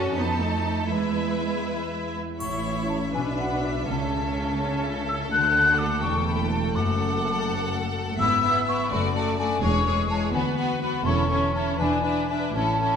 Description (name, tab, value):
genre	classical, dramatic, fast romantic movement for symphony orchestra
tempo	82 BPM (dotted quarters)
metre	6/8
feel	uneven beats, rubato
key	A major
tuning	A4 = 444 Hz
part	clear symphonic violin section	melody	0.0-13.0 s	A4 to A5	-34 LUFS	equal	none
part	rich symphonic violin section	second line	0.0-13.0 s	E4 to C#5	-33 LUFS	left 2 dB	none
part	clear symphonic viola section	accompaniment	0.0-13.0 s	G#3 to F#4	-29 LUFS	equal	none
part	concert harp	arpeggios	0.0-13.0 s	E2 to F#5	-31 LUFS	left 6 dB	none
part	rich symphonic cello section	bass	0.0-13.0 s	D2 to C#4	-32 LUFS	right 4 dB	none
part	rich symphonic double bass section	bass	0.0-13.0 s	E1 to F#2	-31 LUFS	right 3 dB	none
part	mellow hollow silver concert flute	second line	2.1-13.0 s	E5 to F#6	-26 LUFS	left 3 dB	none
part	triangle	percussion	2.4-3.4 s	none	-44 LUFS	left 2 dB	none
room	moderate scoring stage reverb, RT60 1.8 s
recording	none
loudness	-22 LUFS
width	side -7 dB against mid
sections	0.0-2.4 A section; 2.4-13.0 B section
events	none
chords	0.2 F7; 0.9 E; 2.4 A; 3.1 E5/B; 3.9 A/C#; 5.3 D; 6.0 A5/E; 6.8 D/F#; 8.2 E/G#; 8.9 D/F#; 9.6 C#m/E; 10.3 Bm/D; 11.1 A/E; 11.8 E7